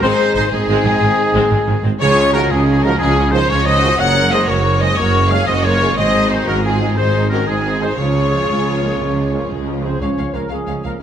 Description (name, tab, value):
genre	cinematic, heroic adventure film score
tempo	121 BPM (dotted quarters)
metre	12/8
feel	straight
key	Db major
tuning	A4 = 441 Hz
part	rich symphonic violin section	melody	0.0-10.9 s	Ab4 to Gb5	-23 LUFS	left 3 dB	none
part	clear oboe	second line	0.0-9.5 s	Ab4 to Gb5	-23 LUFS	equal	none
part	clear symphonic violin section	second line	0.0-10.9 s	C4 to Bb4	-27 LUFS	left 1 dB	none
part	hollow concert flute	second line	0.0-9.5 s	Eb4 to Db5	-24 LUFS	left 2 dB	none
part	rich symphonic viola section	accompaniment	0.0-10.9 s	Eb3 to Ab4	-25 LUFS	equal	none
part	dark French horn section	sustained chords	0.0-11.0 s	Ab3 to Ab4	-26 LUFS	left 4 dB	none
part	mellow trombone section	sustained chords	0.0-11.0 s	Db3 to Db4	-27 LUFS	right 3 dB	none
part	warm trumpet section	stabs	0.0-10.9 s	Ab4 to Gb5	-20 LUFS	equal	none
part	clear symphonic double bass section	bass	0.0-10.9 s	Gb1 to Db2	-22 LUFS	right 2 dB	none
part	dark symphonic cello section	bass	0.0-10.9 s	Db2 to Db3	-21 LUFS	right 1 dB	none
part	mellow tuba	bass	0.0-10.0 s	Gb1 to Db2	-22 LUFS	right 3 dB	none
room	moderate recital hall reverb, RT60 1.5 s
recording	none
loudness	-13 LUFS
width	side -9 dB against mid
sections	0.0-10.0 A section; 10.0-11.0 A section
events	none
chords	0.0 Ab; 2.0 Dbadd9; 4.0 Gbadd9; 6.0 Ab; 8.0 Db